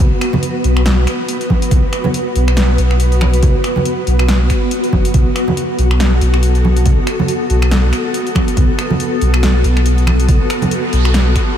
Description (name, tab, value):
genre	deep dubstep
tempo	140 BPM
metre	4/4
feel	swing 58% on 16ths, half-time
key	unclear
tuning	A4 = 441 Hz
part	granular cloud pad	sustained chords	0.0-11.6 s	B3 to B4	-18 LUFS	equal	built-in reverb
part	saturated sub bass	bass	0.0-11.3 s	F#1 to B1	-12 LUFS	equal	none
part	deep house drum kit	drums	0.0-11.5 s	finger snaps, hi-hat, snare drum	-21 LUFS	left 1 dB	overdrive
part	electronic kick drum	drums	0.0-11.5 s	none	-14 LUFS	equal	overdrive
part	congas	percussion	0.3-11.2 s	none	-21 LUFS	right 2 dB	dub echo
part	noise sweep	sound effects	10.6-11.6 s	none	-31 LUFS	right 2 dB	none
room	light reverb, digital ambience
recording	none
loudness	-11 LUFS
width	side -10 dB against mid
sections	0.0-11.6 A section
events	noise sweep 10.6-11.6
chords	0.0 B5